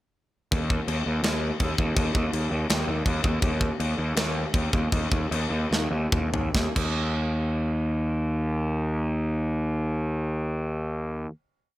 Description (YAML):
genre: heavy metal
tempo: 139-166 BPM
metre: 4/4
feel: straight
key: unclear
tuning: A4 = 440 Hz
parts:
  - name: fuzz picked electric bass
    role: bass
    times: 0.5-11.3 s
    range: Eb2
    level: -26 LUFS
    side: equal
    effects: overdrive
  - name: tight metal drum kit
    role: drums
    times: 0.5-6.9 s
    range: china cymbal, crash cymbal, kick drum, snare drum, toms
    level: -27 LUFS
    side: equal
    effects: none
room: little or no reverb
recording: none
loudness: -24 LUFS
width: side -16 dB against mid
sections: 0.5-6.5 riff; 6.5-10.0 final note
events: slowing down 3.4-6.5; drum fill 5.7-6.5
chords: none